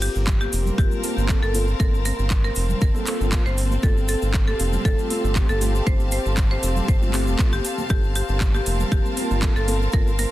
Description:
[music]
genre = deep house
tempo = 118 BPM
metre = 4/4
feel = swing 53% on 16ths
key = G minor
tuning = A4 = 440 Hz
[part]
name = marimba with hard mallets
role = melody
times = 0.0-10.3 s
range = G4 to C5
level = -30 LUFS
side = left 1 dB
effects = tape echo
[part]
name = deep dark ambient pad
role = sustained chords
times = 0.0-10.3 s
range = A4 to C6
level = -34 LUFS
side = right 1 dB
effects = chorus, built-in reverb, sidechain pumping
[part]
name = round analog bass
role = bass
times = 0.0-10.3 s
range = F1 to G1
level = -23 LUFS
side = equal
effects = tube saturation
[part]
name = house drum kit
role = drums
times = 0.0-10.3 s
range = handclaps, hi-hat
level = -30 LUFS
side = right 1 dB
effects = soft clipping on snare
[part]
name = tube shaker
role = percussion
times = 0.0-10.3 s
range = none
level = -37 LUFS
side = left 2 dB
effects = none
[part]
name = clear studio string section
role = texture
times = 0.0-10.3 s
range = C4 to A5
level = -31 LUFS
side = left 1 dB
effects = sidechain pumping
[part]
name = electronic kick drum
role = drums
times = 0.3-10.0 s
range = none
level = -20 LUFS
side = equal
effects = none
[part]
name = congas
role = percussion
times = 0.3-10.3 s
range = none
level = -34 LUFS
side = right 3 dB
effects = none
[part]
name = mellow tine electric piano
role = stabs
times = 0.8-10.1 s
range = A3 to Bb4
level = -29 LUFS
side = equal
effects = ensemble chorus, sidechain pumping, tape echo
[sound]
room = little or no reverb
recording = dense, heavily limited modern master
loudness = -19 LUFS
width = side -15 dB against mid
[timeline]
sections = 0.0-10.3 A section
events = none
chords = 0.0 Gm11; 3.8 Fadd9; 7.9 Gm11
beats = 0.27 0.78 1.29 | 1.80 2.31 2.82 3.32 | 3.83 4.34 4.85 5.36 | 5.87 6.38 6.88 7.39 | 7.90 8.41 8.92 9.43 | 9.93

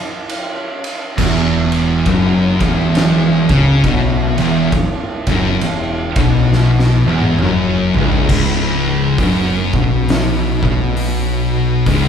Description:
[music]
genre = stoner and doom metal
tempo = 67 BPM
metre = 4/4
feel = swing 61% on 8ths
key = unclear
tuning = A4 = 436 Hz
[part]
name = oversized low-tuned drum kit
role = drums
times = 0.3-12.1 s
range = crash cymbal, hi-hat, kick drum, ride cymbal, snare drum, toms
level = -18 LUFS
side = equal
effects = none
[part]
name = cranked stack guitar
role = riff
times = 1.2-8.3 s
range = C#2 to C#3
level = -21 LUFS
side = right 1 dB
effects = overdrive
[part]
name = thick fuzz guitar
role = riff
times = 1.2-12.1 s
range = C#2 to C#3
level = -17 LUFS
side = left 7 dB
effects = distortion
[part]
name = thick fuzz guitar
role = riff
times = 1.2-12.1 s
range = C#2 to C#3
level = -18 LUFS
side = right 7 dB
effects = distortion
[part]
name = growling picked electric bass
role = bass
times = 1.2-12.1 s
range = C#1 to C#2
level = -22 LUFS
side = equal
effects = overdrive
[sound]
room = wet large studio reverb, RT60 1.0 s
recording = band playing live in one room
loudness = -12 LUFS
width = side -7 dB against mid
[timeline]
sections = 0.0-8.3 A section; 8.3-12.1 B section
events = drum fill 6.5-8.3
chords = 0.0 N.C.; 1.2 E5; 8.3 N.C.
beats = 0.30 | 1.19 2.07 2.96 3.85 | 4.73 5.62 6.51 7.40 | 8.29 9.19 10.08 10.97 | 11.87

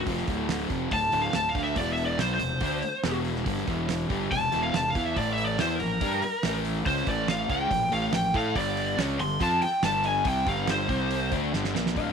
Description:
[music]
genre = classic rock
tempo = 141 BPM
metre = 4/4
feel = straight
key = unclear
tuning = A4 = 440 Hz
[part]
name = overdriven semi-hollow guitar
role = riff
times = 0.0-12.1 s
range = D2 to A4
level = -32 LUFS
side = right 12 dB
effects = none
[part]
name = sludgy distorted guitar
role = riff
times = 0.0-12.1 s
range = D2 to A4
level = -31 LUFS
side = left 10 dB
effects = overdrive
[part]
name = fuzz fingered electric bass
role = bass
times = 0.0-12.1 s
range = D1 to A2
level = -34 LUFS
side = equal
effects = overdrive
[part]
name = damped 70s drum kit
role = drums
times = 0.1-12.1 s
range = hi-hat, kick drum, snare drum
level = -33 LUFS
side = right 3 dB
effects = none
[part]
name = lead guitar through a small cranked amp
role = melody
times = 0.9-11.3 s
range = Bb4 to C6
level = -28 LUFS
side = equal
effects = overdrive
[part]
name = electric slide guitar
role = second line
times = 12.0-12.1 s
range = F5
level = -31 LUFS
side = left 11 dB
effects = none
[sound]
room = light reverb, studio ambience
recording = 1960s-style stereo with parts hard left and right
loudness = -24 LUFS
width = side -6 dB against mid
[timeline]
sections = 0.0-12.0 A section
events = lead electric guitar solo 0.0-12.0; drum fill 11.5-12.0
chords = 0.0 D5; 1.8 E5; 2.2 F5; 3.0 E5; 3.5 G5; 3.7 E5; 4.1 F5; 5.2 A5; 5.6 Bb5; 6.4 A5; 6.9 G#add11/C#; 7.1 A5; 7.5 Bb5; 8.6 G5; 10.9 C5; 11.3 G5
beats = | 0.07 0.49 0.92 1.34 | 1.76 2.19 2.61 3.04 | 3.46 3.89 4.31 4.74 | 5.16 5.59 6.01 6.44 | 6.86 7.29 7.71 8.13 | 8.56 8.98 9.41 9.83 | 10.26 10.68 11.11 11.53 | 11.96

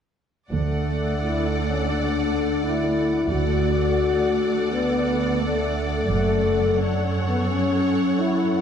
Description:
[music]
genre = cinematic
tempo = 86 BPM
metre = 4/4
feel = straight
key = D major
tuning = A4 = 440 Hz
[part]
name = clear symphonic violin section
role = melody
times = 0.5-8.6 s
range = F#5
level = -34 LUFS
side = left 2 dB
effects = none
[part]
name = clear symphonic violin section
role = second line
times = 0.5-8.6 s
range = C#5 to D5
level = -31 LUFS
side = equal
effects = none
[part]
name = dark symphonic viola section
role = accompaniment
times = 0.5-8.6 s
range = A4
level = -32 LUFS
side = equal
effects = none
[part]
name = dark French horn section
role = sustained chords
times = 0.5-8.6 s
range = A3 to F#4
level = -23 LUFS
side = left 4 dB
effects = none
[part]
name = rich symphonic cello section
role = bass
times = 0.5-8.6 s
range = D2 to F#2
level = -26 LUFS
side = right 3 dB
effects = none
[part]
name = rich symphonic double bass section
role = bass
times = 0.5-6.8 s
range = F#1 to D2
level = -26 LUFS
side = right 4 dB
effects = none
[sound]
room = wet scoring stage reverb, RT60 2.0 s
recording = dark, warm production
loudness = -20 LUFS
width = side -8 dB against mid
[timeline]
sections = 0.5-8.6 A section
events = none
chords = 0.5 D; 6.1 F#m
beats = | 0.53 1.23 1.93 2.62 | 3.31 4.01 4.71 5.41 | 6.10 6.80 7.49 8.18

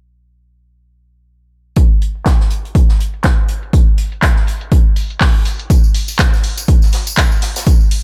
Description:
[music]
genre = piano house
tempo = 122 BPM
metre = 4/4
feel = swing 57% on 16ths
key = none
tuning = none
[part]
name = electronic kick drum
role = drums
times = 1.8-7.8 s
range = none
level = -14 LUFS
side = equal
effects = none
[part]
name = house drum kit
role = drums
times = 1.8-8.0 s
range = handclaps, hi-hat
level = -23 LUFS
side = equal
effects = low-pass filter on hats, low-pass filter on snare
[part]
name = unplugged drum kit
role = drums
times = 1.8-8.0 s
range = hi-hat, snare drum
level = -32 LUFS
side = equal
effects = high-pass filter on hats, high-pass filter on snare, high-pass filter on room
[part]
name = tambourine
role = percussion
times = 5.7-7.9 s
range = none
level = -29 LUFS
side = equal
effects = none
[sound]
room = small room reverb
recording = faint mains hum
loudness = -14 LUFS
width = mono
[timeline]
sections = 1.8-8.0 A section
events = filter sweep on drum 1.8-8.0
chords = none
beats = | 1.77 2.26 2.75 3.24 | 3.73 4.22 4.72 5.21 | 5.70 6.19 6.68 7.18 | 7.67

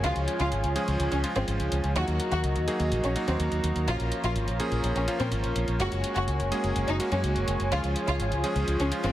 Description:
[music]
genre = italo disco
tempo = 125 BPM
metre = 4/4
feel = straight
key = unclear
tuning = A4 = 439 Hz
[part]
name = warm symphonic violin section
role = melody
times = 0.0-9.1 s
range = C4 to Gb4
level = -33 LUFS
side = left 1 dB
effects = ping-pong delay
[part]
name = warm analog pad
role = sustained chords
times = 0.0-9.1 s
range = F4 to Bb5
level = -32 LUFS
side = equal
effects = wide subtle chorus
[part]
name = bright electric grand piano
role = stabs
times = 0.0-9.1 s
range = F3 to Ab4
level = -31 LUFS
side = right 1 dB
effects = none
[part]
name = fingered electric bass with an envelope filter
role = bass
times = 0.0-9.1 s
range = Gb1 to Bb2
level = -28 LUFS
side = equal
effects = none
[part]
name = electronic hi-hat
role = drums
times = 0.0-9.1 s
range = none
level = -39 LUFS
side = left 1 dB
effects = none
[sound]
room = moderate lush hall reverb, RT60 2.2 s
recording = heavily compressed radio sound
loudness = -25 LUFS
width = side -13 dB against mid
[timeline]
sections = 0.0-9.1 A section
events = none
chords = 0.0 Db; 2.0 Ebm; 3.9 Bbm; 5.8 Gbadd9; 7.7 Db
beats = | 0.04 0.52 1.00 1.48 | 1.96 2.44 2.92 3.40 | 3.88 4.36 4.84 5.32 | 5.80 6.28 6.76 7.24 | 7.72 8.20 8.68

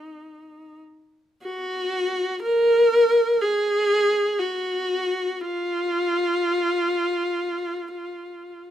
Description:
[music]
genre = classical, free, expressive piece for unaccompanied viola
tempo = free time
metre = none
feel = none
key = Eb minor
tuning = A4 = 440 Hz
[part]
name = dark viola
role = solo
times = 0.0-8.7 s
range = Eb4 to Bb4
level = -21 LUFS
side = equal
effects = none
[sound]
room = light reverb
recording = minimal, uncompressed stereo recording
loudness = -20 LUFS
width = side -10 dB against mid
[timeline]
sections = 0.0-1.4 A section; 1.4-8.7 B section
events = none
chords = none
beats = free time

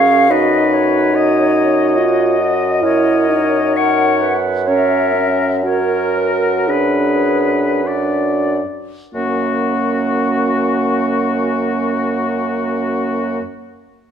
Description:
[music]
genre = classical, slow romantic movement for wind quintet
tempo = 44-72 BPM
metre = 3/4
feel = rubato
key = F# major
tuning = A4 = 439 Hz
[part]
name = concert flute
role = melody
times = 0.0-13.4 s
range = F#4 to F#5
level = -20 LUFS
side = left 4 dB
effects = none
[part]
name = clear oboe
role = second line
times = 0.0-13.4 s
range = F#4 to D#5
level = -21 LUFS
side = left 3 dB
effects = none
[part]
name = clear clarinet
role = accompaniment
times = 0.0-13.4 s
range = C#4 to C#5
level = -21 LUFS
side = right 7 dB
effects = none
[part]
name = warm French horn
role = accompaniment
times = 0.0-13.4 s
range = A#3 to F#4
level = -19 LUFS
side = equal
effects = none
[part]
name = clear bassoon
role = bass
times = 0.0-13.4 s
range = F#2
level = -20 LUFS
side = right 2 dB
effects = none
[sound]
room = moderate recital hall reverb, RT60 1.6 s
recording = none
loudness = -13 LUFS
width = side -8 dB against mid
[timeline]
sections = 0.0-9.1 A section; 9.1-12.9 B section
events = slowing down 1.6-9.1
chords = 0.3 B/F#; 2.8 F#7; 5.6 Bm/F#; 9.1 F#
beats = | 0.30 1.14 1.98 | 2.83 3.76 4.67 | 5.63 6.68 7.84 | 9.14 10.41 11.69

